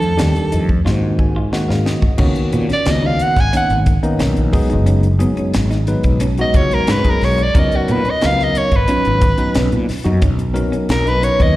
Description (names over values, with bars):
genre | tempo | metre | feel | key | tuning
electric jazz fusion | 90 BPM | 4/4 | straight | unclear | A4 = 440 Hz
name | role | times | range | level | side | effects
edgy soprano saxophone | melody | 0.0-11.6 s | Gb4 to Ab5 | -18 LUFS | equal | slapback echo
clean electric guitar | stabs | 0.0-11.3 s | Cb4 to Gb4 | -27 LUFS | right 4 dB | lush chorus, slapback echo
mellow fretless electric bass | bass | 0.0-11.6 s | Gb1 to Bb2 | -17 LUFS | equal | none
tight funk drum kit | drums | 0.0-11.6 s | crash cymbal, hi-hat, kick drum, snare drum | -18 LUFS | equal | none
bell-like tine electric piano | accompaniment | 0.2-11.6 s | Eb3 to Ab5 | -20 LUFS | left 1 dB | slapback echo
room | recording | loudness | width
studio reverb | live gig heard through the venue's PA, recital hall reverb | -13 LUFS | side -16 dB against mid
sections
0.0-2.2 A section; 2.2-11.6 B section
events
drum fill 0.9-2.2; tine electric piano fill 0.9-2.2; soprano saxophone solo 2.2-11.6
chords
0.0 F13; 0.9 Ab9; 2.2 Db13sus4; 4.5 Abm7; 7.5 Db13sus4; 10.2 Cbmaj9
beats
0.19 0.86 1.53 | 2.20 2.87 3.54 4.20 | 4.87 5.54 6.21 6.88 | 7.55 8.22 8.89 9.56 | 10.23 10.90